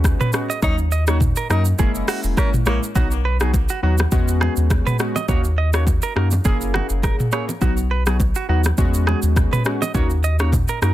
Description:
afrobeats; 103 BPM; 4/4; swing 55% on 16ths; B major; A4 = 444 Hz
glassy digital keys; accompaniment; 0.0-10.9 s; F#3 to G#4; -25 LUFS; left 2 dB; chorus
round analog bass; bass; 0.0-10.9 s; E1 to F#2; -19 LUFS; equal
afro-pop drum kit; drums; 0.0-10.9 s; hi-hat, kick drum, rim click, shaker, toms; -20 LUFS; equal; soft clipping on snare
direct-recorded clean electric guitar; riff; 0.2-10.9 s; F#4 to D#5; -27 LUFS; right 6 dB; ping-pong delay
warm tenor saxophone; melody; 0.6-2.8 s; A#3 to F#4; -30 LUFS; left 2 dB; ping-pong delay
congas and bongos; percussion; 3.0-10.7 s; -30 LUFS; right 1 dB
little or no reverb; dense, heavily limited modern master; -16 LUFS; side -14 dB against mid
0.0-10.9 A section
0.0 E6 (rootless); 0.6 D#m7; 1.8 F#7; 3.0 B; 4.1 E6; 5.3 D#m7; 6.5 F#7; 7.6 B; 8.8 E6; 9.9 D#m7
0.04 | 0.63 1.21 1.79 2.37 | 2.96 3.54 4.12 4.70 | 5.29 5.87 6.45 7.03 | 7.62 8.20 8.78 9.36 | 9.95 10.53

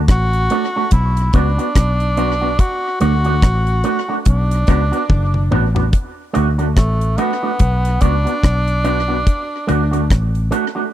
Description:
roots reggae; 72 BPM; 4/4; swing 58% on 16ths; D major; A4 = 441 Hz
vintage muted fingered electric bass; bass; 0.0-10.5 s; F#1 to D2; -16 LUFS; equal; transformer saturation
breathy tenor saxophone; melody; 0.1-10.1 s; A3 to F#4; -21 LUFS; equal; tape echo
deep reggae drum kit; drums; 0.1-10.8 s; hi-hat, kick drum, rim click, toms; -15 LUFS; equal
electric guitar with an envelope filter; accompaniment; 0.5-10.8 s; A3 to F#4; -21 LUFS; right 4 dB; spring reverb, tape echo
little or no reverb; dry, close 1970s-style studio recording; -14 LUFS; side -12 dB against mid
0.0-5.9 A section; 5.9-10.9 B section
drum fill 5.1-5.9; tenor saxophone solo 5.9-10.9
0.0 D; 0.9 Bm; 2.6 D; 4.3 Bm; 5.9 D; 7.6 Bm; 9.3 D
0.09 0.92 1.76 | 2.59 3.43 4.26 5.10 | 5.93 6.77 7.60 8.44 | 9.27 10.11

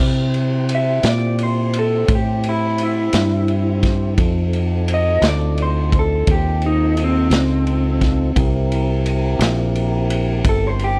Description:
slow blues; 57 BPM (dotted quarters); 12/8; straight; C mixolydian; A4 = 440 Hz
tonewheel organ; sustained chords; 0.0-11.0 s; C4 to C5; -28 LUFS; equal; slow rotary speaker, overdrive
fingered electric bass; bass; 0.0-11.0 s; G1 to C3; -21 LUFS; equal
raw garage drum kit; drums; 0.3-11.0 s; kick drum, ride cymbal, snare drum; -24 LUFS; equal
electric guitar through a small old amp; melody; 0.7-11.0 s; C4 to E5; -23 LUFS; equal; tape echo
small room reverb; -18 LUFS; mono
0.0-11.0 A section
clean electric guitar solo 0.0-11.0
0.0 C7; 4.2 F7; 8.4 C7
1.04 2.09 3.14 | 4.18 5.23 6.27 7.32 | 8.36 9.40 10.45

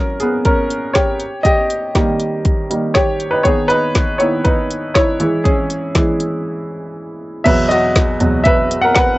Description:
piano-driven pop; 120 BPM; 4/4; straight; A4 = 440 Hz
clear baby grand piano; accompaniment; 0.0-9.2 s; E2 to F#5; -15 LUFS; equal
deep house drum kit; drums; 0.2-9.1 s; crash cymbal, hi-hat, kick drum, snare drum, toms; -16 LUFS; equal; cassette tape
light reverb; home recording on cassette, nothing above 8.0 kHz; -13 LUFS; side -19 dB against mid
0.0-7.5 A section; 7.5-9.2 B section
grand piano solo 0.0-7.5, 7.5-9.2; break 6.5-7.5
0.0 F#; 1.2 D#; 3.5 G#m/D#; 5.2 C#m/E; 7.5 Esus2
0.45 0.95 | 1.45 1.95 2.45 2.95 | 3.45 3.95 4.46 4.96 | 5.46 5.96 6.46 6.96 | 7.46 7.96 8.46 8.96

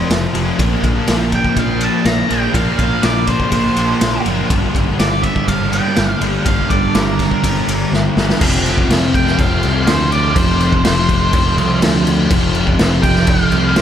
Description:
rock, shoegaze and dream pop; 123 BPM; 4/4; straight; A4 = 439 Hz
fuzz guitar; riff; 0.0-13.8 s; F2 to Bb3; -17 LUFS; equal; distortion, analog chorus
modern bright picked electric bass; bass; 0.1-13.8 s; F1 to D2; -20 LUFS; equal
raw garage drum kit; drums; 0.1-13.8 s; crash cymbal, kick drum, ride cymbal, snare drum; -17 LUFS; equal
octave-fuzz lead guitar; melody; 1.4-13.8 s; Bb4 to Bb5; -21 LUFS; right 1 dB; distortion, analog delay
wet huge ambient reverb, RT60 4.8 s; dreamy mix soaked in reverb; -12 LUFS; side -9 dB against mid
0.0-8.4 A section; 8.4-13.8 B section
drum fill 7.9-8.4
0.0 F5; 0.6 Bbsus2; 4.5 Gm; 8.4 F5
0.11 | 0.60 1.09 1.57 2.06 | 2.55 3.04 3.53 4.02 | 4.51 5.00 5.48 5.97 | 6.46 6.95 7.44 7.93 | 8.42 8.90 9.39 9.88 | 10.36 10.85 11.34 11.82 | 12.31 12.79 13.28 13.77

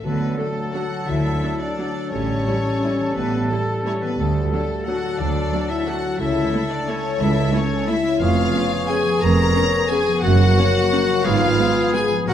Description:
classical, orchestral ballroom waltz; 176 BPM; 3/4; uneven beats, rubato; D major; A4 = 441 Hz
rich symphonic violin section; melody; 0.0-12.3 s; A4 to A#5; -28 LUFS; left 5 dB
clear clarinet; second line; 0.0-12.3 s; A4 to A#5; -31 LUFS; equal
mellow hollow silver concert flute; second line; 0.0-12.3 s; A5 to C#6; -33 LUFS; left 1 dB
warm oboe; second line; 0.0-12.3 s; F#4 to A#4; -31 LUFS; right 1 dB
warm symphonic violin section; second line; 0.0-12.3 s; A3 to A#4; -31 LUFS; left 2 dB
dark bassoon; accompaniment; 0.0-12.3 s; F#3 to B3; -28 LUFS; right 1 dB
concert harp; arpeggios; 0.0-12.3 s; E#2 to Cb5; -28 LUFS; left 8 dB
rich symphonic cello section; bass; 0.0-12.3 s; C#2 to D3; -24 LUFS; right 3 dB
rich symphonic double bass section; bass; 0.0-12.3 s; E#1 to D2; -25 LUFS; right 3 dB
mellow French horn section; sustained chords; 0.1-12.3 s; A3 to A#4; -25 LUFS; left 3 dB
rich symphonic viola section; accompaniment; 0.4-12.3 s; F#3 to E4; -30 LUFS; right 1 dB
moderate recital hall reverb, RT60 1.4 s; lossy compression artefacts; -17 LUFS; side -10 dB against mid
0.0-12.3 A section
0.0 D; 2.1 A7; 4.2 D; 6.2 A/C#; 8.2 C#7/E#; 10.2 F#; 11.3 Fdim/Ab
| 0.04 0.39 0.75 | 1.08 1.43 1.79 | 2.13 2.48 2.84 | 3.17 3.51 3.86 | 4.19 4.52 4.87 | 5.20 5.53 5.87 | 6.20 6.54 6.89 | 7.21 7.54 7.88 | 8.21 8.54 8.88 | 9.22 9.56 9.90 | 10.23 10.57 10.92 | 11.25 11.59 11.94 | 12.28

